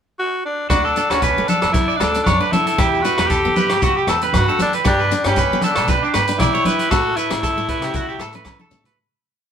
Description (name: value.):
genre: highlife guitar band.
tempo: 116 BPM.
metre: 4/4.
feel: swing 54% on 16ths.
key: D major.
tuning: A4 = 440 Hz.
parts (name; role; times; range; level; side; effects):
raspy tenor saxophone; melody; 0.2-8.7 s; C#4 to G4; -21 LUFS; left 1 dB; none.
picked steel-string acoustic guitar; accompaniment; 0.7-8.9 s; A3 to E4; -28 LUFS; left 3 dB; none.
combo organ; sustained chords; 0.7-9.0 s; E5 to E6; -31 LUFS; left 1 dB; none.
electric guitar at the edge of break-up; arpeggios; 0.7-9.0 s; D4 to D5; -19 LUFS; right 2 dB; none.
upright bass; bass; 0.7-8.9 s; D2 to G3; -26 LUFS; equal; none.
vintage drum kit; drums; 0.7-9.0 s; hi-hat, kick drum, rim click; -23 LUFS; equal; none.
agogo bells; percussion; 0.7-8.6 s; none; -29 LUFS; equal; none.
congas; percussion; 0.7-9.0 s; none; -25 LUFS; equal; none.
shekere; percussion; 0.7-8.9 s; none; -32 LUFS; left 5 dB; none.
room: moderate studio reverb, RT60 0.8 s.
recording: band playing live in one room.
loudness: -15 LUFS.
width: side -8 dB against mid.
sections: 0.0-0.7 pickup bar; 0.7-9.0 groove.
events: fade-out 6.9-9.0; drum fill 8.3-9.0.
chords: 0.0 N.C.; 0.7 D; 2.8 Em; 4.9 G; 6.9 A.